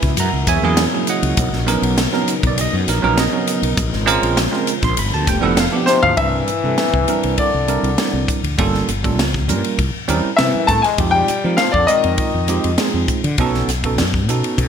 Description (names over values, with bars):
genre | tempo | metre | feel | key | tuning
electric jazz fusion | 100 BPM | 4/4 | straight | unclear | A4 = 440 Hz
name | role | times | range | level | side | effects
bell-like tine electric piano | accompaniment | 0.0-14.7 s | F3 to C6 | -20 LUFS | right 5 dB | analog chorus
string machine, cellos | sustained chords | 0.0-6.2 s | Db3 to C5 | -26 LUFS | left 1 dB | ensemble chorus
mellow fretless electric bass | bass | 0.0-14.7 s | F1 to F3 | -20 LUFS | left 1 dB | none
crisp fusion drum kit | drums | 0.0-14.7 s | hi-hat, kick drum, ride cymbal, snare drum, toms | -20 LUFS | left 1 dB | gated reverb
bright baby grand piano | melody | 5.9-12.7 s | C5 to A5 | -18 LUFS | left 3 dB | ping-pong delay
bright trombone | second line | 5.9-12.7 s | C3 to A3 | -22 LUFS | left 4 dB | ping-pong delay
room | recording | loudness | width
moderate plate reverb, RT60 1.2 s, small room ambience | bright 1980s-style digital production | -15 LUFS | side -7 dB against mid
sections
0.0-6.2 A section; 6.2-14.7 B section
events
drum fill 5.9-6.2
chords
0.2 Gb9; 1.4 Bmaj9; 3.8 Bbm9; 5.0 G13; 6.2 C9; 8.6 Gm7b5; 9.8 C7b9; 11.0 Fm9; 13.4 B9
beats
0.17 0.77 | 1.37 1.98 2.58 3.18 | 3.78 4.38 4.98 5.58 | 6.18 6.78 7.38 7.99 | 8.59 9.19 9.79 10.39 | 10.99 11.59 12.19 12.79 | 13.39 13.99 14.59